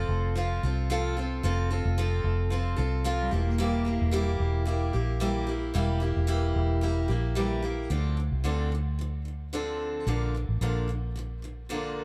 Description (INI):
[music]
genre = acoustic pop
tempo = 111 BPM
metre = 4/4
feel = swing 55% on 16ths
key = D minor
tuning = A4 = 440 Hz
[part]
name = picked steel-string acoustic guitar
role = accompaniment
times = 0.0-12.0 s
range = Bb2 to A4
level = -33 LUFS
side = equal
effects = none
[part]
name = vintage muted fingered electric bass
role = bass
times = 0.0-12.0 s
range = E1 to D2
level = -30 LUFS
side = equal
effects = none
[part]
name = dark cello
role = second line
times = 3.2-4.2 s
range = G3 to Bb3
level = -35 LUFS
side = equal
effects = none
[sound]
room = light reverb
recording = dark, warm production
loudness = -28 LUFS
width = mono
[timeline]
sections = 0.0-7.9 A section; 7.9-12.0 B section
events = none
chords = 0.0 F; 3.3 Edim; 7.9 Dm7; 10.1 Bbmaj7